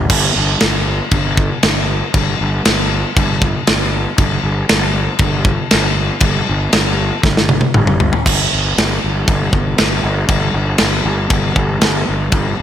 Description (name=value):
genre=hard rock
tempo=118 BPM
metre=4/4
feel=straight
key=unclear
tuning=A4 = 440 Hz
part: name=fuzz fingered electric bass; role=bass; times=0.0-12.6 s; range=G1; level=-17 LUFS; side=equal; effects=overdrive
part: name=tight metal drum kit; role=drums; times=0.1-12.4 s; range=crash cymbal, kick drum, snare drum, toms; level=-14 LUFS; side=equal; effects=none
room=light reverb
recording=none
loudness=-12 LUFS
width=side -10 dB against mid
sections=0.1-8.3 A section; 8.3-12.6 B section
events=drum fill 7.2-8.3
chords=none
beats=| 0.10 0.62 1.13 1.64 | 2.15 2.65 3.16 3.67 | 4.18 4.69 5.20 5.71 | 6.22 6.73 7.24 7.75 | 8.26 8.77 9.28 9.79 | 10.30 10.81 11.32 11.83 | 12.34